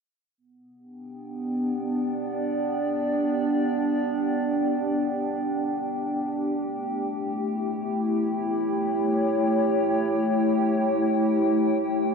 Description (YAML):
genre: ambient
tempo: free time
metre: none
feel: none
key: G lydian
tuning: A4 = 440 Hz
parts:
  - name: warbly tape-like pad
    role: solo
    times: 1.0-12.1 s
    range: A3 to G5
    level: -23 LUFS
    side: equal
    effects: chorus, built-in reverb
room: wet lush hall reverb, RT60 2.9 s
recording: none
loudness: -23 LUFS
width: side -5 dB against mid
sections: 0.4-12.1 A section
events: none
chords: 0.4 G; 6.5 A7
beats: free time